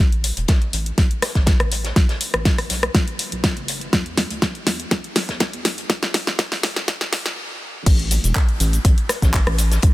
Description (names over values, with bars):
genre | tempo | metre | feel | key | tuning
progressive house | 122 BPM | 4/4 | straight | unclear | A4 = 439 Hz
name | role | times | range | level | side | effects
round analog bass | bass | 0.0-9.9 s | E1 to E2 | -23 LUFS | equal | sidechain pumping
pop drum kit | drums | 0.1-9.9 s | crash cymbal, handclaps, hi-hat, rim click, shaker, snare drum | -21 LUFS | equal | none
warm soul drum kit | drums | 0.2-9.9 s | hi-hat, snare drum | -31 LUFS | left 2 dB | high-pass filter on hats, high-pass filter on snare, high-pass filter on room
electronic kick drum | drums | 0.5-9.9 s | none | -17 LUFS | equal | none
room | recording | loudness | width
studio ambience | dense, heavily limited modern master, high-pass filter | -17 LUFS | side -18 dB against mid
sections
0.0-7.9 A section; 7.9-9.9 B section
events
build-up 0.0-7.9; drum fill 0.0-7.4; filter sweep 0.0-7.9; stop 7.4-7.9; drop 7.9-9.9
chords
none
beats
| 0.00 0.49 0.98 1.47 | 1.96 2.45 2.95 3.44 | 3.93 4.42 4.91 5.41 | 5.90 6.39 6.88 7.37 | 7.86 8.36 8.85 9.34 | 9.83